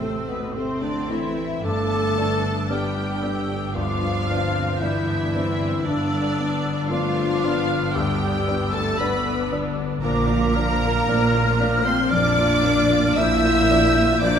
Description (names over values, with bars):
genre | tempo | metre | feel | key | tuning
cinematic | 57 BPM | 4/4 | rubato | unclear | A4 = 440 Hz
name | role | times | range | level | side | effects
rich symphonic violin section | melody | 0.0-14.4 s | B4 to E6 | -29 LUFS | equal | none
flute section | second line | 0.0-14.4 s | C6 to G6 | -28 LUFS | left 1 dB | none
mellow clarinet | second line | 0.0-14.4 s | B3 to E5 | -28 LUFS | equal | none
rich symphonic violin section | second line | 0.0-14.4 s | B3 to E5 | -31 LUFS | equal | none
rich symphonic viola section | accompaniment | 0.0-14.4 s | F3 to F4 | -31 LUFS | right 1 dB | none
warm concert grand piano | accompaniment | 0.0-14.4 s | D2 to D5 | -29 LUFS | left 2 dB | none
dark French horn section | sustained chords | 0.0-14.4 s | B2 to E4 | -26 LUFS | left 2 dB | none
concert harp | arpeggios | 0.0-14.4 s | G2 to D5 | -32 LUFS | left 6 dB | none
warm chamber cello section | bass | 0.0-14.4 s | G2 to Bb2 | -29 LUFS | right 3 dB | none
warm studio double bass section | bass | 0.0-14.4 s | G1 to Bb1 | -28 LUFS | right 3 dB | none
room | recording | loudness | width
wet scoring stage reverb, RT60 2.2 s | none | -19 LUFS | side -8 dB against mid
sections
0.0-14.4 A section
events
none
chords
0.0 Am; 1.6 G; 10.0 Bb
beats
0.55 | 1.65 2.71 3.76 4.80 | 5.86 6.91 7.96 8.99 | 10.04 11.08 12.12 13.18 | 14.23